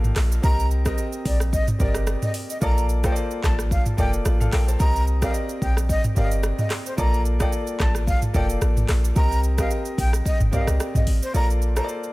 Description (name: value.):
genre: afrobeats.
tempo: 110 BPM.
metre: 4/4.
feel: swing 55% on 16ths.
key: Bb major.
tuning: A4 = 440 Hz.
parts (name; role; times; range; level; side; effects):
clear concert grand piano; accompaniment; 0.0-12.1 s; Bb3 to A5; -29 LUFS; left 1 dB; none.
clean 808-style bass; bass; 0.0-11.8 s; F1 to C2; -21 LUFS; equal; none.
afro-pop drum kit; drums; 0.0-12.1 s; handclaps, hi-hat, kick drum, rim click, shaker, toms; -24 LUFS; equal; none.
breathy jazz flute; melody; 0.4-11.9 s; C5 to Bb5; -30 LUFS; equal; digital delay.
room: little or no reverb.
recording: none.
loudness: -19 LUFS.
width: side -20 dB against mid.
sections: 0.0-11.3 A section.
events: kick muted 11.3-12.1.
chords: 0.4 Cm7; 2.6 Bbmaj7; 4.8 Cm7; 7.0 Bbmaj7; 9.2 Cm7; 11.3 Bbmaj7.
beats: | 0.43 0.98 1.53 2.07 | 2.62 3.16 3.71 4.25 | 4.80 5.34 5.89 6.43 | 6.98 7.53 8.07 8.62 | 9.16 9.71 10.25 10.80 | 11.34 11.89.